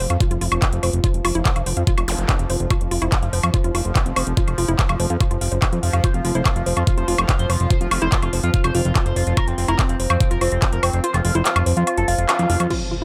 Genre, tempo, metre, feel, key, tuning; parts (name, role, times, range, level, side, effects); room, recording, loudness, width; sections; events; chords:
psychedelic trance; 144 BPM; 4/4; straight; A4 = 438 Hz
bubbling stepped-filter texture; sustained chords; 0.0-13.0 s; F3; -34 LUFS; equal; chorus, built-in reverb, sidechain pumping
woody wave-folded pluck; riff; 0.0-13.0 s; E4 to Gb5; -29 LUFS; equal; chorus, cassette tape, sidechain pumping, digital delay
fat analog bass; bass; 0.0-12.7 s; F1 to F2; -24 LUFS; equal
drum and bass drum kit; drums; 0.0-12.8 s; crash cymbal, handclaps, hi-hat, woodblock; -26 LUFS; equal
warbly tape-like pad; texture; 0.4-13.0 s; C4 to F5; -35 LUFS; equal
electronic kick drum; drums; 0.2-10.7 s; -21 LUFS; equal
zap and impact; sound effects; 2.1-2.2, 12.7-13.0 s; -32 LUFS; equal
overdriven synth lead; melody; 6.0-12.7 s; C4 to C5; -28 LUFS; equal; phaser, sidechain pumping, dub echo
light reverb; -19 LUFS; mono
0.0-12.7 A section
kick drops out 11.0-12.7; band accent 12.3; impact 12.7-13.0
0.0 F5